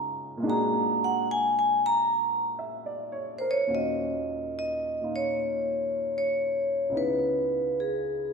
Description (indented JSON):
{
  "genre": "jazz ballad",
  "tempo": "74 BPM",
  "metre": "4/4",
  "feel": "swing 69% on 8ths",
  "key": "Eb minor",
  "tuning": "A4 = 440 Hz",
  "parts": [
    { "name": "warm upright piano", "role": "accompaniment", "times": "0.0-8.3 s", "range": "Db2 to Fb5", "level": "-32 LUFS", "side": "equal", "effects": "none" },
    { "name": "vibraphone with medium hard mallets", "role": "melody", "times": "0.5-8.3 s", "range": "Ab4 to Bb5", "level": "-26 LUFS", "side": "equal", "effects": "none" }
  ],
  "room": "wet concert hall reverb, RT60 1.9 s",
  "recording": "recorded in a church or concert hall",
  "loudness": "-25 LUFS",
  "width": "side -5 dB against mid",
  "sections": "0.0-3.7 A section; 3.7-8.3 B section",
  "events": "vibraphone solo 0.0-3.7",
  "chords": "0.4 Bbaug7; 3.7 Ebm9; 6.9 Dbm7"
}